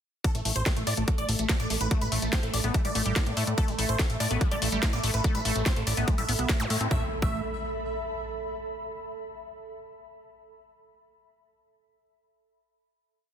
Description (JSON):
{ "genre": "psychedelic trance", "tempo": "144 BPM", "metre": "4/4", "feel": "straight", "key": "unclear", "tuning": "A4 = 441 Hz", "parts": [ { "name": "supersaw stab", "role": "melody", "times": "0.2-7.4 s", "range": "A3 to E5", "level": "-34 LUFS", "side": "equal", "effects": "phaser, sidechain pumping, ping-pong delay" }, { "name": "bubbling stepped-filter texture", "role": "sustained chords", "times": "0.6-7.0 s", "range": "A3", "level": "-38 LUFS", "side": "right 2 dB", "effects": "chorus, built-in reverb, sidechain pumping" }, { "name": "drum and bass drum kit", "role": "drums", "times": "0.2-6.9 s", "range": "hi-hat, snare drum", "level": "-31 LUFS", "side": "left 2 dB", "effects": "overdrive, studio reverb" }, { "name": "electronic kick drum", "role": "drums", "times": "0.2-7.3 s", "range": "none", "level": "-26 LUFS", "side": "equal", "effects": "overdrive, studio reverb" }, { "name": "ethereal airy pad", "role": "texture", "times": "1.7-8.5 s", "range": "A4 to B5", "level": "-38 LUFS", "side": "right 1 dB", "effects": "ensemble chorus, built-in reverb, sidechain pumping" }, { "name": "plucky analog bass", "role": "bass", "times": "0.3-7.4 s", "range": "A1 to A2", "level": "-30 LUFS", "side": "equal", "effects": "none" }, { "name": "liquid acid bass", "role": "riff", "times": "1.9-7.4 s", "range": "G3 to E4", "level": "-34 LUFS", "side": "moving between left 6 dB and right 5 dB", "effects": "chorus, auto-pan, sidechain pumping, ping-pong delay" }, { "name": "zap and impact", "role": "sound effects", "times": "6.6-8.6 s", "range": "none", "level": "-37 LUFS", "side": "equal", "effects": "none" } ], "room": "little or no reverb", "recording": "dense, heavily limited modern master", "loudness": "-25 LUFS", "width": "side -9 dB against mid", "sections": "0.2-6.9 groove; 6.9-8.6 final chord", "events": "fade-in on ambient pad 0.2-6.9", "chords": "0.2 A5" }